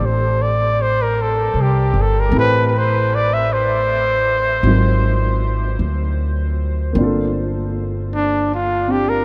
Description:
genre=jazz ballad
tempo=52 BPM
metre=4/4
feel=swing 67% on 8ths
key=G minor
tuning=A4 = 441 Hz
part: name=mellow trumpet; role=melody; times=0.0-9.2 s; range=D4 to E5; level=-21 LUFS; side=equal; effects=none
part: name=warm concert grand piano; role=accompaniment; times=0.0-9.2 s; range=Gb3 to C5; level=-26 LUFS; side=equal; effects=none
part: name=upright bass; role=bass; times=0.0-9.2 s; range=G1 to D2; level=-21 LUFS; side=equal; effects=none
room=moderate huge ambient reverb, RT60 7.7 s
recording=in a vast, echoing space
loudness=-18 LUFS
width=mono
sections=0.0-9.2 A section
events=none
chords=0.0 Dm7; 2.3 Am7; 4.7 Ab13; 7.0 Gm11

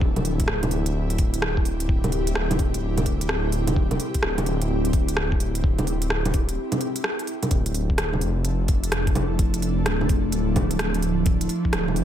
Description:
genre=future garage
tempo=128 BPM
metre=4/4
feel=swing 64% on 16ths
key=D minor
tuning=A4 = 437 Hz
part: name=ethereal airy pad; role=sustained chords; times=0.0-12.0 s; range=F3 to A4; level=-28 LUFS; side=right 1 dB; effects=ensemble chorus, built-in reverb, sidechain pumping
part: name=dark detuned saw bass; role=bass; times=0.0-12.0 s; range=D1 to F1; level=-25 LUFS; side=equal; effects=sidechain pumping
part: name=electronic kick drum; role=drums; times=0.0-11.7 s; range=none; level=-23 LUFS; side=equal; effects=none
part: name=organic electronic drum kit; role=drums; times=0.2-12.0 s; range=bongos, hi-hat, rim click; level=-26 LUFS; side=right 1 dB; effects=overdrive
room=digital ambience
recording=none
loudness=-21 LUFS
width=side -10 dB against mid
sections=0.0-7.5 A section; 7.5-12.0 A section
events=break 6.6-7.5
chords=0.0 C/D; 7.5 Dmadd9

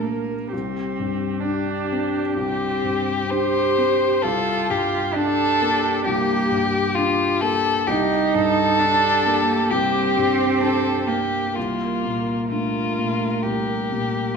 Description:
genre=neoclassical piano and strings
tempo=65 BPM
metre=4/4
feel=rubato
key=unclear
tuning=A4 = 440 Hz
part: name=muted cello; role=second line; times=0.0-14.4 s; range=A3 to G4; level=-24 LUFS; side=right 5 dB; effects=none
part: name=felt-muted upright piano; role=accompaniment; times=0.0-14.4 s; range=C2 to D4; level=-26 LUFS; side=left 3 dB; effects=none
part: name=muted viola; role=accompaniment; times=0.0-14.4 s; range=G4 to Bb4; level=-29 LUFS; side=equal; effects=none
part: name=muted violin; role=melody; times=2.3-14.4 s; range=F4 to C5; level=-22 LUFS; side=left 3 dB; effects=none
room=wet recital hall reverb, RT60 1.2 s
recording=recorded in a church or concert hall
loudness=-19 LUFS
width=side -5 dB against mid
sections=0.0-14.4 A section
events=none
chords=0.0 Bb/C; 0.5 Csus2; 4.2 Gm/C; 11.6 Bbmaj7/C

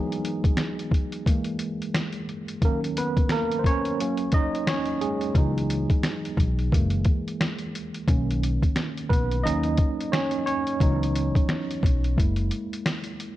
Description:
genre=lo-fi hip hop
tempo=88 BPM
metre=4/4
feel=swing 60% on 16ths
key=C# dorian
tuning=A4 = 435 Hz
part: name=tine electric piano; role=accompaniment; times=0.0-13.4 s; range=D#3 to D#5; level=-27 LUFS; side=right 1 dB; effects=medium stereo tremolo, cassette tape
part: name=lo-fi sampler-style drum kit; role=drums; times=0.1-13.4 s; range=finger snaps, hi-hat, kick drum, snare drum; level=-24 LUFS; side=equal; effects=overdrive
part: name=upright bass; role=bass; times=5.4-12.5 s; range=F#1 to D#2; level=-26 LUFS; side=left 1 dB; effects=none
room=light reverb, digital ambience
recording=cassette tape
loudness=-22 LUFS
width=side -15 dB against mid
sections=0.0-13.4 A section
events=break 0.0-5.3; tine electric piano solo 0.0-13.4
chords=0.0 Emaj9; 1.3 E; 2.6 Bmaj9; 4.0 D#m7; 5.3 C#m11; 6.7 F#9; 8.1 Bmaj9; 9.4 D#m7; 10.8 C#m11; 12.2 F#9

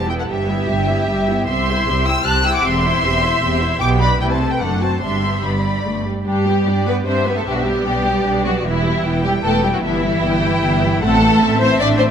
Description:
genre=quick classical-period movement for string orchestra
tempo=152 BPM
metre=3/4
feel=rubato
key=G major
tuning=A4 = 440 Hz
part: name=rich chamber violin section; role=melody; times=0.0-12.1 s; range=D5 to F#6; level=-22 LUFS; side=left 2 dB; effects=none
part: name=clear symphonic viola section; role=accompaniment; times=0.0-12.1 s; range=E3 to C5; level=-22 LUFS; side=equal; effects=none
part: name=clear studio cello section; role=bass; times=0.0-12.1 s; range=C2 to D4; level=-22 LUFS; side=right 2 dB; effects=none
part: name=rich symphonic double bass section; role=bass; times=0.0-12.1 s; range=E1 to G2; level=-21 LUFS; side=right 2 dB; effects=none
part: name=rich symphonic violin section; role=second line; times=0.1-12.0 s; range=E4 to A5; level=-20 LUFS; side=left 2 dB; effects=none
room=moderate concert hall reverb, RT60 2.4 s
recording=none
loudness=-15 LUFS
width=side -8 dB against mid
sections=0.0-6.3 A section; 6.3-12.1 A section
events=none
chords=0.3 Em/G; 1.5 C; 2.6 C/E; 3.8 G/B; 4.2 Am/C; 4.6 D7/F#; 5.0 G; 7.5 G/B; 8.7 Em; 9.8 Em/G; 11.0 Am

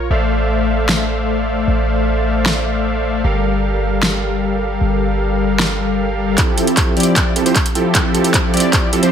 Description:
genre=future bass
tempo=153 BPM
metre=4/4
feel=half-time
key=F major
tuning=A4 = 441 Hz
part: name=big bright polysynth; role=riff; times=0.0-9.1 s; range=F3 to F5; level=-16 LUFS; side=left 1 dB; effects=sidechain pumping, tape echo
part: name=warm 808-style bass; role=bass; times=0.0-6.4 s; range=G1 to A1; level=-20 LUFS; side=equal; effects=sidechain pumping
part: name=big-room dance drum kit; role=drums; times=0.9-9.1 s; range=handclaps, hi-hat, snare drum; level=-18 LUFS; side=equal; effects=overdrive
part: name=electronic kick drum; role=drums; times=6.4-8.8 s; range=none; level=-17 LUFS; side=equal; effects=overdrive
room=light reverb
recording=none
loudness=-14 LUFS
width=side -8 dB against mid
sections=0.0-6.4 A section; 6.4-9.1 B section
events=build-up 6.4-9.1; drum fill 6.4-9.1; filter sweep on analog polysynth 6.4-9.1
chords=0.1 Dm9/A; 3.2 Gm7; 6.4 Fmaj7

